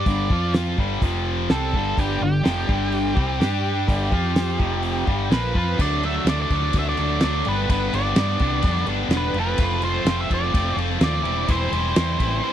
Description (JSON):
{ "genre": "classic rock", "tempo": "126 BPM", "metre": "4/4", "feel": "straight", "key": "G mixolydian", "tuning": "A4 = 440 Hz", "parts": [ { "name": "octave-fuzz lead guitar", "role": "melody", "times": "0.0-12.5 s", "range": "G4 to E5", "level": "-26 LUFS", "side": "right 3 dB", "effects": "distortion" }, { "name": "tight distorted guitar", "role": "riff", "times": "0.0-12.5 s", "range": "F2 to G4", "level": "-24 LUFS", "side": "left 1 dB", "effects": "distortion" }, { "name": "hollow-body short-scale fingered electric bass", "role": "bass", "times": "0.1-12.4 s", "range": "E1 to G2", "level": "-25 LUFS", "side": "equal", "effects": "none" }, { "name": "damped 70s drum kit", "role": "drums", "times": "0.1-12.3 s", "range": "crash cymbal, hi-hat, kick drum, ride cymbal, snare drum", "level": "-22 LUFS", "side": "equal", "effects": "none" } ], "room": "little or no reverb", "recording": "dry, close 1970s-style studio recording", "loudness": "-19 LUFS", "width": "side -10 dB against mid", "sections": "0.0-5.8 A section; 5.8-12.5 B section", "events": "none", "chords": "0.3 F5; 0.8 G5; 1.0 F5; 1.5 G5; 4.1 F5; 5.1 G5; 5.8 D; 7.5 G; 9.4 F; 11.3 C/E" }